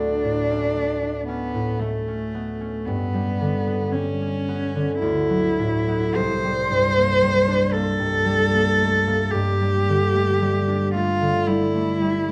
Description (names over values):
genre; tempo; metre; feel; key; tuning
classical, impressionist duo for cello and harp; 56 BPM; 3/4; rubato; unclear; A4 = 440 Hz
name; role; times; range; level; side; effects
warm cello; melody; 0.0-12.3 s; A3 to C5; -24 LUFS; equal; none
concert harp; accompaniment; 0.0-12.3 s; C2 to D4; -25 LUFS; equal; none
room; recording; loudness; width
moderate recital hall reverb, RT60 1.3 s; dark, warm production; -22 LUFS; mono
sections
0.0-12.3 A section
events
none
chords
0.0 D5; 2.9 G; 5.0 D69; 6.2 Csus2; 9.3 Gmadd9